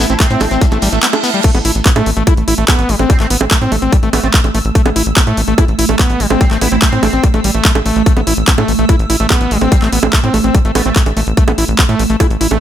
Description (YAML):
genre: psychedelic trance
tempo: 145 BPM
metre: 4/4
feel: straight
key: A minor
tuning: A4 = 440 Hz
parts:
  - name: metallic wobble bass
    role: second line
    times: 0.0-10.9 s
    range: A3 to E4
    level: -26 LUFS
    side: right 1 dB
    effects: distortion, analog chorus, sidechain pumping, high-pass filter, ping-pong delay
  - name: swarming drone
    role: sustained chords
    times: 0.0-12.6 s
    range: A3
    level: -20 LUFS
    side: right 4 dB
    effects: built-in reverb, sidechain pumping
  - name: screaming distorted acid line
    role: riff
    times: 0.0-12.6 s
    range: G3 to E4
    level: -17 LUFS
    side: left 1 dB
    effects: distortion, chorus, auto-pan, sidechain pumping, tape echo
  - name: tight sequencer bass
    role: bass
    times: 0.0-12.6 s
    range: A1 to A2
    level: -16 LUFS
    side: equal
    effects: none
  - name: shekere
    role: percussion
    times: 0.0-1.4 s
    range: none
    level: -25 LUFS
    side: left 4 dB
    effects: none
  - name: airy breathy pad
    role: texture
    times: 0.0-1.4 s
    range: A3 to A5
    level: -23 LUFS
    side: equal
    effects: chorus, sidechain pumping
  - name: techno drum kit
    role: drums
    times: 0.1-12.6 s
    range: bongos, crash cymbal, handclaps, hi-hat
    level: -16 LUFS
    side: right 2 dB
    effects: overdrive
  - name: electronic kick drum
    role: drums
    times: 0.2-12.3 s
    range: none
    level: -11 LUFS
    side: equal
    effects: none
  - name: reverse cymbal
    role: sound effects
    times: 0.8-1.4 s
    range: none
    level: -22 LUFS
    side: right 7 dB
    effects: none
room: digital ambience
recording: none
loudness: -10 LUFS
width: side -10 dB against mid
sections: 0.0-1.4 A section; 1.4-12.6 B section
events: reverse cymbal 0.8-1.4; drop 1.4-12.6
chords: 0.0 A5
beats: 0.20 0.61 1.03 | 1.44 1.86 2.27 2.68 | 3.10 3.51 3.92 4.34 | 4.75 5.17 5.58 5.99 | 6.41 6.82 7.24 7.65 | 8.06 8.48 8.89 9.30 | 9.72 10.13 10.55 10.96 | 11.37 11.79 12.20